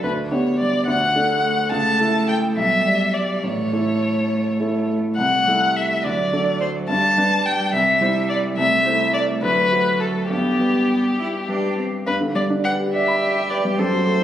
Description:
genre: quick classical-period movement for piano trio.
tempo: 70 BPM (dotted quarters).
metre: 6/8.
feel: straight.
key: G major from 5.2 s.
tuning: A4 = 441 Hz.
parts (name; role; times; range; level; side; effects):
rich violin; melody; 0.0-14.2 s; G4 to A5; -20 LUFS; left 2 dB; none.
warm concert grand piano; accompaniment; 0.0-14.2 s; A1 to B5; -22 LUFS; right 1 dB; none.
rich cello; second line; 0.6-14.2 s; F#3 to A4; -24 LUFS; right 2 dB; none.
room: moderate scoring stage reverb, RT60 2.1 s.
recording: recorded on a phone in the room, club reverb.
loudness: -17 LUFS.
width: side -11 dB against mid.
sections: 0.0-12.1 A section; 12.1-14.2 B section.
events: none.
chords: 0.0 G/D; 0.9 D; 1.7 A/C#; 2.6 G/B; 3.4 A; 5.2 Am7/C; 6.0 D; 6.9 G; 7.7 C; 8.6 Am/C; 9.4 D7; 10.3 G.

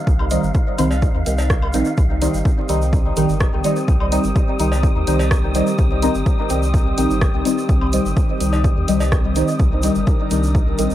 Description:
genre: dub techno.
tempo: 126 BPM.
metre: 4/4.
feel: straight.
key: C minor.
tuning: A4 = 440 Hz.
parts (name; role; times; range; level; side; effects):
wind-like tuned noise texture; texture; 0.0-10.9 s; F5 to Eb6; -30 LUFS; left 1 dB; built-in reverb, sidechain pumping.
warm sub bass; bass; 0.1-10.9 s; G1 to Eb2; -21 LUFS; equal; sidechain pumping.
electronic kick drum; drums; 0.1-10.6 s; none; -18 LUFS; equal; none.
egg shaker; percussion; 0.1-10.9 s; none; -34 LUFS; right 3 dB; none.
woodblock and cowbell; percussion; 0.2-9.1 s; none; -31 LUFS; left 1 dB; sidechain pumping on perc, dub echo.
deep mellow chord stab; stabs; 0.3-10.9 s; Eb3 to Eb4; -21 LUFS; equal; chorus, phaser, vintage 12-bit sampler grit, sidechain pumping, dub echo.
punchy analog drum machine; drums; 0.3-10.9 s; hi-hat, rim click; -27 LUFS; right 1 dB; dub echo.
airy breathy pad; sustained chords; 2.0-10.9 s; Eb3 to Bb4; -26 LUFS; equal; chorus, sidechain pumping.
room: light reverb.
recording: vinyl crackle.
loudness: -15 LUFS.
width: side -13 dB against mid.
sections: 0.0-10.9 A section.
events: none.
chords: 0.0 Cm.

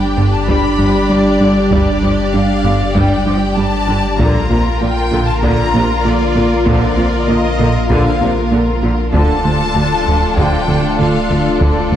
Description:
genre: cinematic, hybrid orchestral and electronic film score.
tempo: 97 BPM.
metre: 4/4.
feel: straight.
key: unclear.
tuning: A4 = 440 Hz.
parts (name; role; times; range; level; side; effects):
warm symphonic violin section; melody; 0.0-12.0 s; D5 to B5; -21 LUFS; left 3 dB; none.
rich symphonic violin section; second line; 0.0-12.0 s; F4 to D5; -21 LUFS; left 3 dB; none.
clear symphonic viola section; accompaniment; 0.0-12.0 s; C3 to F4; -22 LUFS; right 1 dB; none.
dark analog pad; sustained chords; 0.0-12.0 s; D3 to F5; -20 LUFS; left 1 dB; chorus.
soft round pluck; arpeggios; 0.0-12.0 s; D3 to F4; -25 LUFS; left 1 dB; none.
round analog bass; riff; 0.0-12.0 s; D2 to Bb3; -18 LUFS; right 2 dB; none.
pure sine sub bass; bass; 0.0-12.0 s; D1 to Bb1; -21 LUFS; equal; none.
rich symphonic cello section; bass; 0.2-12.0 s; D2 to Bb2; -22 LUFS; right 2 dB; none.
rich symphonic double bass section; bass; 0.2-12.0 s; G1 to D2; -24 LUFS; right 2 dB; none.
mellow French horn section; sustained chords; 0.5-11.8 s; F3 to D4; -25 LUFS; left 2 dB; none.
solo taiko drums; drums; 0.5-12.0 s; none; -20 LUFS; equal; none.
room: wet scoring stage reverb, RT60 1.9 s.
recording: dark, warm production.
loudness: -11 LUFS.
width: side -10 dB against mid.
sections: 0.0-12.0 A section.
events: none.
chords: 0.0 G; 4.2 Bb; 9.1 Dm.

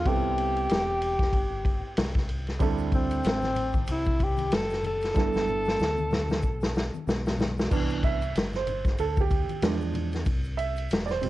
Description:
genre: hip hop, jazz-hop.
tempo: 94 BPM.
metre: 4/4.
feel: swing 57% on 16ths.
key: A minor.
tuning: A4 = 440 Hz.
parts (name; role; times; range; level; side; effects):
breathy tenor saxophone; melody; 0.0-7.0 s; C4 to A4; -28 LUFS; left 1 dB; cassette tape, analog delay.
dark upright piano; accompaniment; 0.0-11.3 s; B2 to E5; -33 LUFS; right 8 dB; cassette tape.
deep dub fingered electric bass; bass; 0.0-11.3 s; E1 to E2; -32 LUFS; equal; none.
vintage drum kit; drums; 0.1-11.3 s; crash cymbal, hi-hat, kick drum, ride cymbal, snare drum; -28 LUFS; left 1 dB; cassette tape.
egg shaker and congas; percussion; 2.6-11.3 s; none; -40 LUFS; left 7 dB; none.
room: light reverb.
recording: home recording on cassette.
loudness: -24 LUFS.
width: side -16 dB against mid.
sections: 0.0-7.7 A section; 7.7-11.3 B section.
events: drum fill 5.2-7.7; upright piano solo 7.7-11.3.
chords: 0.1 Am9; 2.6 D9sus4; 5.2 G69; 7.7 Cmaj9; 9.6 E7b9; 10.3 Am (rootless).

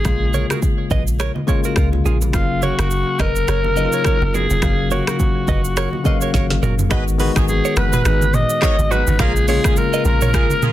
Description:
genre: afrobeats.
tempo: 105 BPM.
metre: 4/4.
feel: swing 58% on 16ths.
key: G# dorian.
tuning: A4 = 439 Hz.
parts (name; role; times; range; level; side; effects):
growling alto saxophone; melody; 0.0-10.7 s; E#4 to D#5; -21 LUFS; equal; digital delay.
bell-like tine electric piano; accompaniment; 0.0-10.7 s; C#3 to E#5; -23 LUFS; left 6 dB; none.
deep log drum bass; bass; 0.0-10.4 s; E#1 to C#2; -19 LUFS; equal; none.
afro-pop drum kit; drums; 0.0-10.7 s; finger snaps, handclaps, hi-hat, kick drum, rim click, shaker, snare drum, toms; -20 LUFS; equal; soft clipping on snare.
congas; percussion; 0.1-10.7 s; none; -28 LUFS; right 3 dB; none.
direct-recorded clean electric guitar; riff; 0.3-10.5 s; D#4 to E#5; -26 LUFS; right 8 dB; digital delay.
warm horn section; second line; 6.9-10.7 s; B3 to C#5; -28 LUFS; right 2 dB; none.
room: light reverb.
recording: dense, heavily limited modern master.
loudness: -15 LUFS.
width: side -13 dB against mid.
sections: 0.0-6.9 A section; 6.9-10.7 B section.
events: drum fill 6.3-6.9.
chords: 0.1 A#m7; 2.3 F#maj7; 6.9 G#m7; 9.2 A#m7.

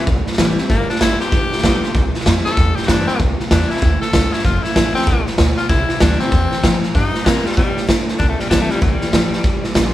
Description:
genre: rockabilly.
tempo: 192 BPM.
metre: 4/4.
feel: swing 62% on 8ths.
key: C major.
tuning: A4 = 440 Hz.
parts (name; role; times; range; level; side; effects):
raspy tenor saxophone; melody; 0.0-9.7 s; G3 to A4; -22 LUFS; left 2 dB; none.
picked steel-string acoustic guitar; accompaniment; 0.0-9.9 s; F2 to F4; -25 LUFS; left 2 dB; none.
upright bass; bass; 0.1-9.9 s; F1 to C3; -20 LUFS; equal; none.
raw garage drum kit; drums; 0.1-9.8 s; hi-hat, kick drum, snare drum; -16 LUFS; equal; none.
room: light reverb.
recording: band playing live in one room.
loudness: -14 LUFS.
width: side -14 dB against mid.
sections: 0.0-3.2 A section; 3.2-9.9 B section.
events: none.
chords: 0.0 C; 0.7 G7; 1.9 C; 4.4 F; 5.7 C; 6.9 G7; 8.2 C.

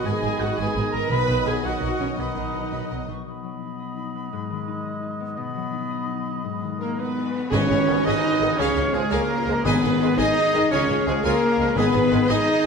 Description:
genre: cinematic, heroic adventure film score.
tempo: 113 BPM (dotted quarters).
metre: 6/8.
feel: straight.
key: B major, G# dorian from 7.5 s.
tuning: A4 = 442 Hz.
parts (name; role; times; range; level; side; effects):
clear symphonic violin section; melody; 0.0-3.1, 6.8-12.7 s; G#4 to B5; -34 LUFS; left 3 dB; none.
bright clarinet; second line; 0.0-12.7 s; G#3 to F#5; -33 LUFS; equal; none.
bright concert flute; second line; 0.0-12.6 s; G#4 to D#6; -32 LUFS; left 2 dB; none.
warm oboe; second line; 0.0-12.7 s; C#5 to B5; -34 LUFS; equal; none.
warm symphonic violin section; second line; 0.0-3.2, 7.5-12.7 s; A#4 to G#5; -35 LUFS; left 3 dB; none.
warm symphonic viola section; accompaniment; 0.0-3.1, 7.5-12.7 s; C#4 to B4; -28 LUFS; right 3 dB; none.
clear trombone section; sustained chords; 0.0-3.1, 7.9-12.7 s; D#3 to B3; -35 LUFS; right 3 dB; none.
mellow French horn section; sustained chords; 0.0-3.1, 6.8-12.7 s; G#3 to D#4; -25 LUFS; left 3 dB; none.
concert harp; arpeggios; 0.0-12.7 s; G#2 to B5; -32 LUFS; left 7 dB; none.
clear trumpet; stabs; 0.0-3.1, 6.8-12.7 s; G#4 to D#5; -28 LUFS; right 2 dB; none.
rich symphonic cello section; bass; 0.1-3.1, 6.8-12.7 s; G#2 to D#4; -29 LUFS; right 4 dB; none.
rich symphonic double bass section; bass; 0.1-3.1, 7.5-12.4 s; G#1 to C#2; -30 LUFS; right 4 dB; none.
timpani; percussion; 1.1-1.6, 7.5-12.2 s; G#2 to B2; -30 LUFS; equal; none.
cymbal swell and tam-tam; percussion; 5.4-8.9 s; none; -36 LUFS; left 2 dB; none.
room: wet scoring stage reverb, RT60 1.6 s.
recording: none.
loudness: -20 LUFS.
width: side -5 dB against mid.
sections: 0.0-3.3 A section; 3.3-7.5 B section; 7.5-12.7 C section.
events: band accent 7.5-7.9.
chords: 0.1 G#m; 1.1 B; 4.3 G#m; 5.4 B; 6.4 G#m; 8.6 C#; 9.6 G#m; 10.7 C#; 11.8 G#m.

